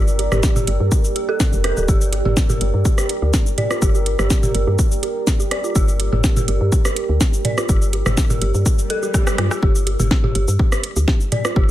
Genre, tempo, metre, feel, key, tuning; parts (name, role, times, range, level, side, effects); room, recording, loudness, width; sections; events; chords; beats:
minimal techno; 124 BPM; 4/4; straight; G minor; A4 = 439 Hz
dark detuned synth bell; riff; 0.0-11.6 s; F4 to D5; -27 LUFS; equal; chorus, vintage 12-bit sampler grit, sidechain pumping, ping-pong delay
woody FM bass; bass; 0.0-11.7 s; D1 to G2; -19 LUFS; equal; sidechain pumping
deep dark ambient pad; texture; 0.0-11.7 s; G4 to Bb5; -26 LUFS; right 2 dB; chorus, built-in reverb, sidechain pumping
house drum kit; drums; 0.1-11.5 s; cabasa, hi-hat, rim click, snare drum; -24 LUFS; equal; studio reverb
booming analog drum machine; percussion; 0.2-11.5 s; bongos, rim click, toms; -25 LUFS; right 1 dB; studio reverb
electronic kick drum; drums; 0.4-11.7 s; -17 LUFS; equal; studio reverb
swell; sound effects; 8.8-9.6 s; -29 LUFS; right 2 dB
light reverb; -15 LUFS; side -14 dB against mid
0.0-9.6 A section; 9.6-11.7 B section
swell 8.8-9.6; drum fill 9.1-9.6; drop 9.6-11.7
0.0 Gm
0.43 0.92 1.40 | 1.88 2.37 2.85 3.34 | 3.82 4.30 4.79 5.27 | 5.75 6.24 6.72 7.21 | 7.69 8.17 8.66 9.14 | 9.63 10.11 10.59 11.08 | 11.56